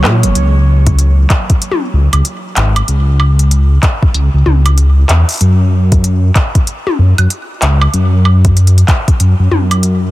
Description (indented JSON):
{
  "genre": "IDM",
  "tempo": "95 BPM",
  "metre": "4/4",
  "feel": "swing 62% on 16ths",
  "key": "unclear",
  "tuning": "A4 = 440 Hz",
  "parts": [
    { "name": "dark detuned saw bass", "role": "bass", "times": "0.0-10.1 s", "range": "F#1 to A#2", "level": "-8 LUFS", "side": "equal", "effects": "none" },
    { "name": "organic electronic drum kit", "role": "drums", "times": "0.0-10.0 s", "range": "handclaps, hi-hat, toms, woodblock", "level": "-17 LUFS", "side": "equal", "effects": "overdrive" },
    { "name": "electronic kick drum", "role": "drums", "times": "0.9-9.2 s", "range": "none", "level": "-10 LUFS", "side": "equal", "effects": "overdrive" }
  ],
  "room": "little or no reverb",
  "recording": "dense, heavily limited modern master",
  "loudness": "-8 LUFS",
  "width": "side -17 dB against mid",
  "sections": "0.4-10.1 A section",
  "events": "break 0.0-0.4",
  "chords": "none",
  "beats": "| 0.36 0.99 1.62 2.25 | 2.88 3.51 4.15 4.78 | 5.41 6.04 6.67 7.30 | 7.93 8.57 9.20 9.83"
}